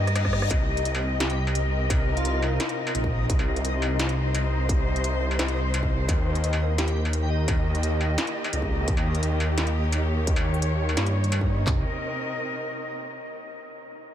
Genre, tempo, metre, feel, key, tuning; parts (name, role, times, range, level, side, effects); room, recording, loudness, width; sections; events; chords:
half-time drum and bass; 172 BPM; 4/4; half-time; C phrygian; A4 = 440 Hz
dark symphonic cello section; sustained chords; 0.0-13.0 s; C3 to Eb5; -30 LUFS; left 1 dB; sidechain pumping
dark detuned saw bass; bass; 0.0-11.8 s; Bb1 to G2; -25 LUFS; equal; tube saturation
reverse cymbal; sound effects; 0.0-0.5 s; -39 LUFS; left 5 dB
backwards swelling texture; texture; 0.0-11.7 s; Eb4 to Eb5; -36 LUFS; left 2 dB; built-in reverb, lush chorus
industrial drum kit; drums; 0.1-11.4 s; hi-hat, rim click, snare drum, struck metal; -31 LUFS; equal; small room reverb
industrial drum kit; drums; 0.2-11.8 s; handclaps, kick drum, toms; -26 LUFS; equal; distortion, small room reverb
airy dreamy lead; melody; 1.2-2.5, 6.8-7.5 s; Eb4 to G4; -37 LUFS; equal; chorus, ping-pong delay
light reverb; -22 LUFS; side -10 dB against mid
0.0-11.7 A section; 11.7-13.1 B section
drop 0.0-11.7; drum fill 0.0-0.5; reverse cymbal 0.0-0.5
0.0 Eb; 0.5 Cm7; 6.1 Eb; 11.7 Cm7